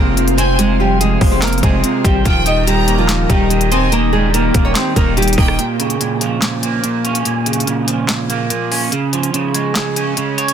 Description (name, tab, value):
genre	hip hop, trap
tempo	144 BPM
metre	4/4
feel	half-time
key	Bb dorian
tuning	A4 = 440 Hz
part	nylon-string guitar	melody	0.0-5.5 s	F3 to Eb5	-18 LUFS	left 1 dB	tape echo
part	electric guitar at the edge of break-up	accompaniment	0.0-10.5 s	Bb2 to Eb5	-18 LUFS	right 4 dB	analog chorus
part	glassy FM pad	sustained chords	0.0-5.6 s	F4 to C6	-24 LUFS	left 1 dB	ensemble chorus, built-in reverb
part	distorted 808-style bass	bass	0.0-5.6 s	Eb1 to Ab1	-17 LUFS	equal	distortion
part	trap drum kit	drums	0.2-10.5 s	handclaps, hi-hat, kick drum, rim click, snare drum	-18 LUFS	left 1 dB	none
part	bright studio violin section	second line	0.4-5.6 s	G5 to Bb5	-25 LUFS	right 1 dB	tape echo
room	little or no reverb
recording	dense, heavily limited modern master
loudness	-13 LUFS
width	side -8 dB against mid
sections	0.0-5.6 A section; 5.6-10.5 B section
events	break 5.6-10.5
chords	0.0 Fm; 2.3 Eb; 5.6 Bbm; 8.9 Db